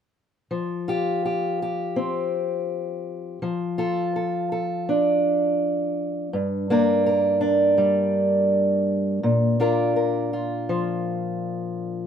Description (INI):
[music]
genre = folk, solo fingerstyle acoustic guitar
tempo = 83 BPM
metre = 4/4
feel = straight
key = F major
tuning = A4 = 440 Hz
[part]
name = fingerpicked old ladder-braced acoustic guitar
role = solo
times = 0.5-12.1 s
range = G2 to Bb4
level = -21 LUFS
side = equal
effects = none
[sound]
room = moderate studio reverb, RT60 0.8 s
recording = band playing live in one room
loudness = -21 LUFS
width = side -8 dB against mid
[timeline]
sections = 0.5-12.1 A section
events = none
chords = 0.5 Fsus2; 3.4 Dm/F; 6.3 Gm; 9.2 Bb